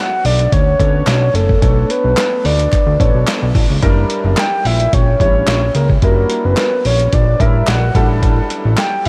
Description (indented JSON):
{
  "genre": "early-eighties boogie funk",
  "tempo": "109 BPM",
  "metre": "4/4",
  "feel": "straight",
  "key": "B minor",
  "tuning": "A4 = 444 Hz",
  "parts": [
    { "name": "soft octave-layered synth lead", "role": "melody", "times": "0.0-9.1 s", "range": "A4 to G5", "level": "-20 LUFS", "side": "equal", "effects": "chorus, delay" },
    { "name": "warm grand piano", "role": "accompaniment", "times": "0.0-8.9 s", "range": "G3 to C#5", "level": "-25 LUFS", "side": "equal", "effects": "analog chorus" },
    { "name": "fat analog bass", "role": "bass", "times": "0.2-9.1 s", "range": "F#1 to D2", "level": "-17 LUFS", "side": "equal", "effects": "none" },
    { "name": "lo-fi sampler-style drum kit", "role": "drums", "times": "0.2-9.1 s", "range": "handclaps, hi-hat, kick drum, snare drum", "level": "-19 LUFS", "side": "equal", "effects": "none" },
    { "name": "group handclap", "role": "percussion", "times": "1.1-8.9 s", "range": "none", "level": "-35 LUFS", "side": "equal", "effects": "none" }
  ],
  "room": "moderate huge ambient reverb, RT60 5.2 s",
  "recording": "dreamy mix soaked in reverb",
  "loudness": "-14 LUFS",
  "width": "mono",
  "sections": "0.0-9.1 A section",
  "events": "none",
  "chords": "0.0 Bm9; 3.8 F#7b9b13; 8.0 A7sus4"
}